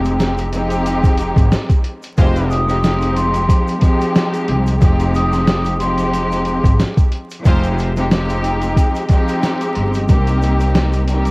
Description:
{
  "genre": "hip hop, boom-bap hip-hop",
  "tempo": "91 BPM",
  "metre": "4/4",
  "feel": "swing 55% on 16ths",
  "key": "F minor",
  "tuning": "A4 = 440 Hz",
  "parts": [
    { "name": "muted studio string section", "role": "accompaniment", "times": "0.0-11.3 s", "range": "F3 to G4", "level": "-18 LUFS", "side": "equal", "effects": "cassette tape" },
    { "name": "upright bass", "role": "bass", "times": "0.0-11.3 s", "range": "F1 to C2", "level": "-18 LUFS", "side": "equal", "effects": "none" },
    { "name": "lo-fi sampler-style drum kit", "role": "drums", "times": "0.1-11.3 s", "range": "hi-hat, kick drum, snare drum", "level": "-15 LUFS", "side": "equal", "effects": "none" },
    { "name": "egg shaker", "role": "percussion", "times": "0.1-11.3 s", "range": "none", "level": "-45 LUFS", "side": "right 2 dB", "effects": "none" },
    { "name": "warm horn section", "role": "stabs", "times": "2.2-2.6, 7.5-7.7 s", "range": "Ab3 to C5", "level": "-27 LUFS", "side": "equal", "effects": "cassette tape, analog delay" },
    { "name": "vibraphone with medium hard mallets", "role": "melody", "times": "2.5-6.8 s", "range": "C6 to Eb6", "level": "-22 LUFS", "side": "equal", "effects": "cassette tape" }
  ],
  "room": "little or no reverb",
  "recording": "home recording on cassette, vinyl crackle",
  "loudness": "-13 LUFS",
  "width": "side -27 dB against mid",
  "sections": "0.0-11.3 A section",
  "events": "none",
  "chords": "0.0 Fm7; 10.1 Cm7",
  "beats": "0.20 0.86 1.52 | 2.18 2.84 3.50 4.16 | 4.82 5.47 6.13 6.79 | 7.45 8.11 8.77 9.43 | 10.09 10.75"
}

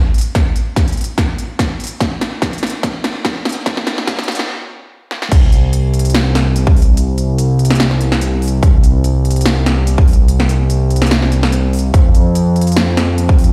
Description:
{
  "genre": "future bass",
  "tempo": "145 BPM",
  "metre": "4/4",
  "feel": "swing 54% on 16ths, half-time",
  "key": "unclear",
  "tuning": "A4 = 440 Hz",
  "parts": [
    { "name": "big-room dance drum kit", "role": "drums", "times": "0.1-13.5 s", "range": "crash cymbal, hi-hat, snare drum", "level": "-21 LUFS", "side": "equal", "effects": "none" },
    { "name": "electronic kick drum", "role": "drums", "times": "0.3-13.4 s", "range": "none", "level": "-14 LUFS", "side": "equal", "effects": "none" },
    { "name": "fat analog bass", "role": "bass", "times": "5.3-13.5 s", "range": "C2 to F2", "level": "-15 LUFS", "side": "equal", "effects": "sidechain pumping" }
  ],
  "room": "light reverb",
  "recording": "played on a big sound system in a bare room, stone room reverb, high-pass filter",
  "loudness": "-14 LUFS",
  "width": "mono",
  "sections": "0.0-5.3 A section; 5.3-13.5 B section",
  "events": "build-up 0.0-5.3; drum fill 0.0-4.5, 5.1; filter sweep 0.0-5.3; stop 4.5-5.3; drop 5.3-13.5",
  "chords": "none",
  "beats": "| 0.35 0.77 1.18 1.59 | 2.01 2.42 2.83 3.25 | 3.66 4.08 4.49 4.90 | 5.32 5.73 6.14 6.56 | 6.97 7.39 7.80 8.21 | 8.63 9.04 9.46 9.87 | 10.28 10.70 11.11 11.52 | 11.94 12.35 12.77 13.18"
}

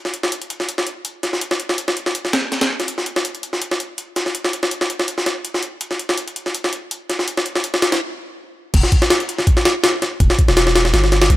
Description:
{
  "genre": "drum and bass, jungle",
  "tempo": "164 BPM",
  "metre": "4/4",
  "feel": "swing 53% on 16ths",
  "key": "E minor",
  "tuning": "A4 = 442 Hz",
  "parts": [
    { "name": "jungle sampler-style drum kit", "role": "drums", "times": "0.1-11.4 s", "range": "crash cymbal, hi-hat, kick drum, snare drum", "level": "-17 LUFS", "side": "equal", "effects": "high-pass filter on snare, high-pass filter on hats, high-pass filter on kick, high-pass filter on cymbals" },
    { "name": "long sustained 808-style bass", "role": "bass", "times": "8.7-11.4 s", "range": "E1 to B1", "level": "-16 LUFS", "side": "equal", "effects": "tube saturation" }
  ],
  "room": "digital ambience",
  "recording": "none",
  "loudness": "-17 LUFS",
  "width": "side -16 dB against mid",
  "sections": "0.0-8.7 A section; 8.7-11.4 B section",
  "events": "stop 8.0-8.7; drop 8.7-11.4",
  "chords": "none",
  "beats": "0.32 0.69 1.05 | 1.42 1.79 2.15 2.52 | 2.88 3.25 3.62 3.98 | 4.35 4.71 5.08 5.45 | 5.81 6.18 6.54 6.91 | 7.27 7.64 8.01 8.37 | 8.74 9.10 9.47 9.84 | 10.20 10.57 10.93 11.30"
}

